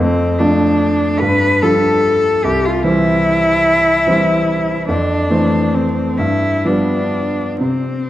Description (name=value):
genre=classical, romantic duo for cello and grand piano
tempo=41-50 BPM (dotted quarters)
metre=6/8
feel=rubato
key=unclear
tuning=A4 = 440 Hz
part: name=rich cello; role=melody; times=0.0-8.1 s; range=C4 to B4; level=-16 LUFS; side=left 1 dB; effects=none
part: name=clear concert grand piano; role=accompaniment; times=0.0-8.1 s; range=C2 to D4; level=-16 LUFS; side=equal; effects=none
room=wet concert hall reverb, RT60 2.4 s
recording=dark, warm production, vinyl crackle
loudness=-12 LUFS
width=side -14 dB against mid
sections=0.0-8.1 A section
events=none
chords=0.0 Dm/F; 1.2 G5; 2.5 C; 4.9 Fmaj7; 6.2 G7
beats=1.21 | 2.45 3.67 | 4.89 6.19 | 7.62